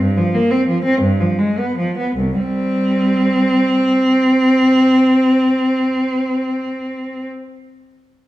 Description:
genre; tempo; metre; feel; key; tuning
classical, baroque-style suite movement for unaccompanied cello; 50-61 BPM (dotted quarters); 6/8; rubato; unclear; A4 = 440 Hz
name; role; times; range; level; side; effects
rich cello; solo; 0.0-7.3 s; C2 to C4; -14 LUFS; equal; none
room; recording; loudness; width
wet recital hall reverb, RT60 1.7 s; dark, warm production; -13 LUFS; side -16 dB against mid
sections
0.0-2.2 A section; 2.2-6.8 B section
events
slowing down 0.0-2.2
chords
0.0 G7sus4; 1.0 G7; 2.2 C5

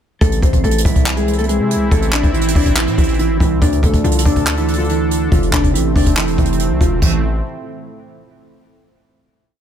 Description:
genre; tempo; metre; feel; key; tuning
hip hop, trap; 141 BPM; 4/4; half-time; A harmonic minor; A4 = 439 Hz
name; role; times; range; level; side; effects
mellow electric guitar; melody; 0.2-7.2 s; E3 to D5; -18 LUFS; right 1 dB; none
sweeping resonant pad; sustained chords; 0.2-7.2 s; A2 to A4; -25 LUFS; equal; chorus
distorted 808-style bass; bass; 0.2-7.4 s; E1 to C3; -18 LUFS; equal; distortion
jazz brush drum kit; drums; 0.2-7.1 s; crash cymbal, handclaps, hi-hat, kick drum; -16 LUFS; equal; none
room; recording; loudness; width
studio ambience; none; -13 LUFS; side -9 dB against mid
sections
0.2-7.0 hook; 7.0-8.7 final chord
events
none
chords
0.2 Am; 3.6 Dm; 5.3 F; 7.0 N.C.

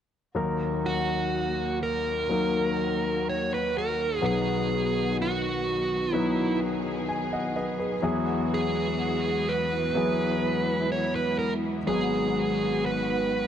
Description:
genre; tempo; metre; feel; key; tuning
pop ballad; 63 BPM; 4/4; straight; unclear; A4 = 438 Hz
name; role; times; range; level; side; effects
warm concert grand piano; accompaniment; 0.3-13.5 s; G#1 to G#5; -28 LUFS; left 3 dB; none
rich symphonic string section; sustained chords; 0.4-13.5 s; D#3 to G#4; -33 LUFS; right 1 dB; none
dark smooth lead guitar; melody; 0.9-13.5 s; F#4 to C#5; -28 LUFS; right 3 dB; overdrive
room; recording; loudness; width
moderate concert hall reverb, RT60 2.3 s; dark, warm production; -24 LUFS; side -9 dB against mid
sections
0.4-13.5 A section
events
none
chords
0.4 D#m; 4.2 B; 8.0 Eadd9; 11.9 G#m7

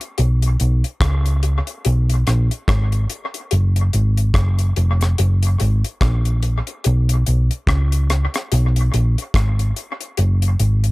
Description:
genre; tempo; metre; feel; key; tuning
roots reggae; 72 BPM; 4/4; swing 58% on 16ths; unclear; A4 = 440 Hz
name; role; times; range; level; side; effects
deep reggae drum kit; drums; 0.0-10.9 s; hi-hat, kick drum, rim click; -22 LUFS; left 1 dB; dub echo
hollow-body short-scale picked electric bass; bass; 0.2-10.9 s; E#1 to C#2; -15 LUFS; equal; none
room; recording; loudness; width
little or no reverb; none; -16 LUFS; side -21 dB against mid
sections
0.0-10.9 A section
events
none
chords
none

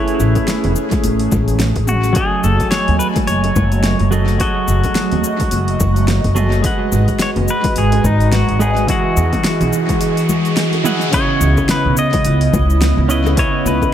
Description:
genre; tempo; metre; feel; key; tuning
sunset chillout; 107 BPM; 4/4; swing 58% on 16ths; F# dorian; A4 = 440 Hz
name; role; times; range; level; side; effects
pedal steel guitar; melody; 0.0-13.9 s; D#4 to D#5; -21 LUFS; left 2 dB; vintage 12-bit sampler grit, tape echo
semi-hollow electric guitar; accompaniment; 0.0-13.9 s; C#3 to F#5; -20 LUFS; right 1 dB; auto-pan, tape echo
airy breathy pad; sustained chords; 0.0-13.9 s; C#3 to G#5; -22 LUFS; right 2 dB; chorus
deep house drum kit; drums; 0.1-13.9 s; cabasa, hi-hat, snare drum, toms; -23 LUFS; equal; overdrive, tape echo
upright bass; bass; 0.2-13.8 s; E1 to E2; -16 LUFS; equal; none
electronic kick drum; drums; 0.4-13.9 s; none; -21 LUFS; equal; overdrive
bongos and congas; percussion; 0.4-13.9 s; none; -26 LUFS; left 2 dB; none
riser; sound effects; 9.0-11.1 s; none; -28 LUFS; equal; none
room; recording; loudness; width
light reverb, digital ambience; echo-heavy mix; -13 LUFS; side -10 dB against mid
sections
0.0-11.1 A section; 11.1-13.9 B section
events
riser 9.0-11.1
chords
0.0 Amaj9; 2.2 F#m69; 6.6 G#m7; 8.9 Emaj9; 11.1 C#m9

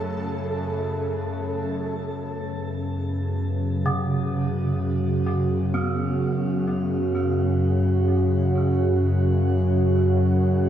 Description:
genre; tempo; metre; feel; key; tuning
ambient; free time; none; none; F# minor; A4 = 440 Hz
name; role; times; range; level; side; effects
deep dark ambient pad; sustained chords; 0.0-10.7 s; F#2 to F#5; -28 LUFS; right 3 dB; chorus, built-in reverb, shimmer reverb
bowed-like drone; drone; 0.0-10.7 s; F#2 to C#3; -22 LUFS; equal; built-in reverb
flickering grainy texture; texture; 0.0-1.7 s; A4; -33 LUFS; right 1 dB; built-in reverb, shimmer reverb
gamelan-type bronze metallophone; arpeggios; 3.9-10.7 s; C#3 to B3; -30 LUFS; right 2 dB; tape echo, shimmer reverb
room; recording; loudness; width
wet cathedral reverb, RT60 5.6 s; cassette tape, small room ambience; -21 LUFS; side -10 dB against mid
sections
0.0-1.7 A section; 1.7-10.7 B section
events
fade-out on bronze metallophone 1.7-10.7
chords
0.0 A6/F#; 1.7 F#5

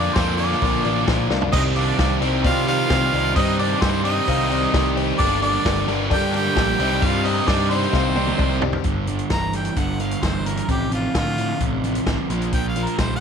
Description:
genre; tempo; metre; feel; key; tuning
classic rock; 131 BPM; 4/4; straight; C dorian; A4 = 440 Hz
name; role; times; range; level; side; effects
bright harmonica; melody; 0.0-13.2 s; F4 to Bb5; -26 LUFS; equal; none
clear trumpet; second line; 0.0-8.6 s; C4 to G4; -29 LUFS; right 10 dB; none
warm upright piano; accompaniment; 0.0-8.8 s; D4 to F5; -28 LUFS; left 13 dB; none
crunchy overdriven guitar; riff; 0.0-13.2 s; F2 to G4; -26 LUFS; right 13 dB; none
overdriven semi-hollow guitar; riff; 0.0-13.2 s; F2 to G4; -28 LUFS; left 12 dB; none
sludgy distorted guitar; riff; 0.0-8.6 s; G2 to C4; -26 LUFS; equal; overdrive
fuzz picked electric bass; bass; 0.0-13.2 s; G1 to C3; -24 LUFS; equal; overdrive
vintage drum kit; drums; 0.2-13.1 s; crash cymbal, hi-hat, kick drum, snare drum, splash cymbal, toms; -25 LUFS; equal; none
room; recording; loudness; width
light reverb, studio reverb; 1960s-style stereo with parts hard left and right; -18 LUFS; side -7 dB against mid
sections
0.0-8.9 A section; 8.9-13.2 B section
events
drum fill 1.3, 7.9-8.9; harmonica solo 8.9-13.2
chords
0.0 Bb; 1.5 Cmadd9; 5.2 Gmadd9; 6.8 Cmadd9; 8.9 G5; 10.7 F/A; 12.3 Bb5

